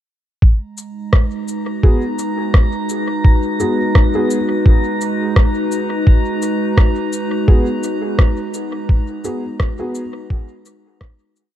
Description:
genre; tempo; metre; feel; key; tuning
ambient dub; 85 BPM; 4/4; swing 56% on 16ths; G# minor; A4 = 440 Hz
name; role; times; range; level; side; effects
warbly tape-like pad; sustained chords; 0.8-11.6 s; G#3 to B4; -20 LUFS; equal; chorus, built-in reverb, vintage 12-bit sampler grit
electronic kick drum; drums; 0.4-11.2 s; none; -11 LUFS; equal; none
drifting glass-harmonics texture; texture; 1.4-11.6 s; A#5; -29 LUFS; right 1 dB; chorus, built-in reverb
electronic cabasa and rim click; drums; 0.8-11.5 s; none; -24 LUFS; equal; dub echo
dark upright piano; stabs; 1.8-10.0 s; B3 to G#4; -24 LUFS; right 1 dB; dub echo
room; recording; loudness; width
digital ambience; dark, warm production; -14 LUFS; side -11 dB against mid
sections
0.4-11.6 groove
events
fade-out 8.0-11.6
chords
0.4 G#m7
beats
| 0.42 1.13 1.83 2.54 | 3.25 3.95 4.66 5.36 | 6.07 6.78 7.48 8.19 | 8.89 9.60 10.30 11.01

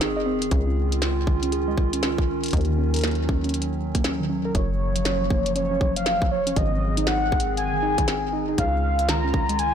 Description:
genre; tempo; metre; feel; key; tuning
IDM; 119 BPM; 4/4; swing 62% on 16ths; Gb lydian; A4 = 437 Hz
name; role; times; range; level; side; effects
warbly tape-like pad; sustained chords; 0.0-9.7 s; Eb3 to Ab4; -28 LUFS; right 1 dB; chorus, built-in reverb
warbly dusty pluck; arpeggios; 0.0-9.6 s; Eb3 to Eb5; -30 LUFS; right 3 dB; chorus, ping-pong delay
deep acid bass; bass; 0.0-9.7 s; Gb1 to Eb2; -26 LUFS; equal; none
glitchy drum kit; drums; 0.0-9.7 s; hi-hat, snare drum; -29 LUFS; equal; soft clipping on snare, digital delay
electronic kick drum; drums; 0.5-9.5 s; none; -23 LUFS; equal; none
warm velvety synth lead; melody; 4.5-9.7 s; Db5 to Bb5; -25 LUFS; left 1 dB; chorus, ping-pong delay
room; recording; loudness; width
light reverb, digital ambience; blown-out, overdriven recording, overdrive; -21 LUFS; side -8 dB against mid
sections
0.0-9.7 A section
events
none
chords
0.0 Ab; 0.5 Dbadd9; 2.5 Ebm7; 4.5 Gbmaj7; 6.6 Ab; 8.6 Dbadd9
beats
0.01 | 0.51 1.02 1.52 2.03 | 2.53 3.04 3.54 4.04 | 4.55 5.05 5.56 6.06 | 6.57 7.07 7.57 8.08 | 8.58 9.09 9.59

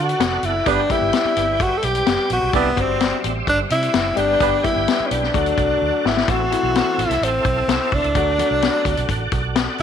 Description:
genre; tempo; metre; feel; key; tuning
uptempo 1960s-style soul; 128 BPM; 4/4; straight; D mixolydian; A4 = 441 Hz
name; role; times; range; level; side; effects
breathy tenor saxophone; melody; 0.0-9.8 s; B3 to A4; -20 LUFS; equal; none
tonewheel organ; sustained chords; 0.0-9.8 s; G3 to G5; -26 LUFS; right 3 dB; chorus vibrato, fast rotary speaker
vintage muted fingered electric bass; bass; 0.0-9.8 s; F1 to D3; -26 LUFS; right 3 dB; none
vintage drum kit; drums; 0.1-9.8 s; hi-hat, kick drum, snare drum; -23 LUFS; left 4 dB; none
mellow horn section; second line; 0.7-4.6 s; B3 to D5; -24 LUFS; right 11 dB; none
clear concert grand piano; accompaniment; 0.7-8.9 s; E3 to G4; -25 LUFS; left 10 dB; none
room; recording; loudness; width
light reverb, small room ambience; 1960s-style stereo with parts hard left and right; -16 LUFS; side -8 dB against mid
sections
0.0-6.3 A section; 6.3-9.8 B section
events
drum fill 5.8-6.3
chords
0.0 D; 0.7 G; 2.5 Cadd9; 4.2 G; 5.3 D; 6.3 Am; 8.1 D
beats
0.19 | 0.66 1.13 1.60 2.06 | 2.53 3.00 3.47 3.94 | 4.40 4.87 5.34 5.81 | 6.28 6.75 7.21 7.68 | 8.15 8.62 9.08 9.55

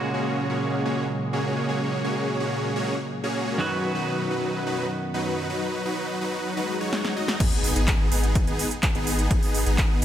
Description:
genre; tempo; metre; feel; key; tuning
EDM, festival progressive house; 126 BPM; 4/4; straight; G# minor; A4 = 440 Hz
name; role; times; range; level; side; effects
clean electric guitar; accompaniment; 0.0-5.5 s; F#2 to F#4; -30 LUFS; right 2 dB; sidechain pumping, tape echo
lush unison pad; sustained chords; 0.0-5.5 s; F#2 to G#3; -32 LUFS; left 1 dB; chorus, sidechain pumping
supersaw chords; riff; 0.0-10.0 s; F#3 to D#5; -26 LUFS; equal; sidechain pumping, tape echo
swell and impact; sound effects; 6.6-9.3 s; none; -35 LUFS; left 1 dB; none
big-room dance drum kit; drums; 6.9-10.0 s; crash cymbal, handclaps, hi-hat, ride cymbal, snare drum; -28 LUFS; equal; overdrive
saturated sub bass; bass; 7.4-10.0 s; G#1; -26 LUFS; equal; sidechain pumping
electronic kick drum; drums; 7.4-9.9 s; none; -24 LUFS; equal; overdrive
room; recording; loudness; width
light reverb, digital ambience; none; -23 LUFS; side -11 dB against mid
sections
0.0-7.4 A section; 7.4-10.0 B section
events
swell 6.6-7.4; drum fill 6.9-7.4; drop 7.4-10.0; impact 7.4-9.3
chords
0.0 F#add9; 3.6 B/F#; 7.4 G#m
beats
0.26 0.74 1.21 | 1.69 2.16 2.64 3.12 | 3.59 4.07 4.54 5.02 | 5.50 5.97 6.45 6.93 | 7.40 7.88 8.36 8.83 | 9.31 9.78

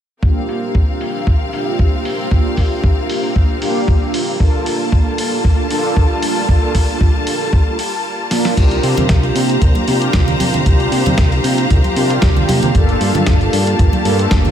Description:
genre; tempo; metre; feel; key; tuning
nu-disco, nu disco; 115 BPM; 4/4; swing 53% on 16ths; unclear; A4 = 440 Hz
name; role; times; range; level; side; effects
mellow synth brass; accompaniment; 0.2-14.5 s; Bb3 to Bb4; -19 LUFS; right 1 dB; chorus, sidechain pumping, ping-pong delay
bright studio string section; sustained chords; 0.2-14.5 s; C3 to Bb5; -22 LUFS; left 2 dB; sidechain pumping
electronic kick drum; drums; 0.2-14.4 s; none; -14 LUFS; equal; none
dusty soul sampler-style drum kit; drums; 0.5-14.5 s; crash cymbal, hi-hat, snare drum; -24 LUFS; equal; low-pass filter on hats, low-pass filter on snare, low-pass filter on cymbals, low-pass filter on room
fat analog bass; bass; 8.6-14.5 s; G1 to C3; -17 LUFS; equal; none
congas; percussion; 9.0-14.5 s; none; -22 LUFS; right 2 dB; none
room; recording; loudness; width
light reverb, digital ambience; none; -12 LUFS; side -10 dB against mid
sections
0.2-8.6 A section; 8.6-14.5 B section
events
filter sweep on analog polysynth 0.2-8.6; kick drops out 8.1-8.6; drum fill 8.3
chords
0.2 C7sus4; 4.4 Gm9; 8.6 C7sus4; 12.7 Gm9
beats
| 0.23 0.75 1.27 1.79 | 2.31 2.83 3.36 3.88 | 4.40 4.92 5.44 5.96 | 6.49 7.01 7.53 8.05 | 8.57 9.10 9.62 10.14 | 10.66 11.18 11.70 12.23 | 12.75 13.27 13.79 14.31

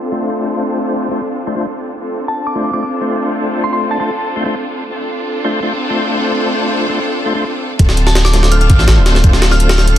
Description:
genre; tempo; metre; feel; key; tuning
drum and bass, jungle; 166 BPM; 4/4; straight; D minor; A4 = 440 Hz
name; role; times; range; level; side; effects
warm studio string section; sustained chords; 0.0-10.0 s; C4 to A4; -19 LUFS; equal; none
percussive tonewheel organ; stabs; 0.1-9.9 s; A3 to C5; -19 LUFS; left 2 dB; chorus vibrato, fast rotary speaker, dub echo
glassy synth bell; melody; 2.3-4.1, 8.1-9.8 s; A5 to F6; -21 LUFS; equal; chorus, phaser, vintage 12-bit sampler grit, dub echo
soft dub sub bass; bass; 7.8-9.9 s; D1 to A1; -11 LUFS; equal; tube saturation
jungle sampler-style drum kit; drums; 7.8-10.0 s; hi-hat, kick drum, snare drum; -13 LUFS; equal; none
room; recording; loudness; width
light reverb; dense, heavily limited modern master, vinyl crackle, low-pass filter; -13 LUFS; side -12 dB against mid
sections
0.0-7.8 A section; 7.8-10.0 B section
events
filter sweep on tonewheel organ 0.0-7.8; filter sweep 0.0-7.8; drop 7.8-10.0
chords
0.0 Dm7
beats
0.20 | 0.57 0.93 1.29 1.65 | 2.01 2.37 2.73 3.10 | 3.46 3.82 4.18 4.54 | 4.90 5.26 5.63 5.99 | 6.35 6.71 7.07 7.43 | 7.79 8.16 8.52 8.88 | 9.24 9.60 9.96

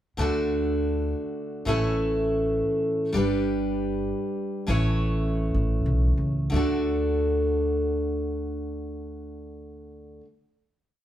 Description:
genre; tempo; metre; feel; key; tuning
acoustic folk duo or small band; 86-121 BPM; 3/4; straight; D major; A4 = 441 Hz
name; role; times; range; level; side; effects
picked steel-string acoustic guitar; accompaniment; 0.2-10.3 s; A2 to C#5; -26 LUFS; equal; none
upright bass; bass; 0.2-10.2 s; G1 to D2; -28 LUFS; equal; none
room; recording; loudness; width
moderate large studio reverb, RT60 1.0 s; band playing live in one room; -23 LUFS; side -11 dB against mid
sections
0.2-6.5 interlude; 6.5-10.7 final chord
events
slowing down 3.1-6.5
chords
0.2 D; 1.7 A; 3.1 G; 4.7 A; 6.5 D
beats
| 0.17 0.67 1.16 | 1.66 2.15 2.65 | 3.14 3.64 4.15 | 4.69 5.25 5.86 | 6.52 7.22 7.92 | 8.62 9.32 10.02

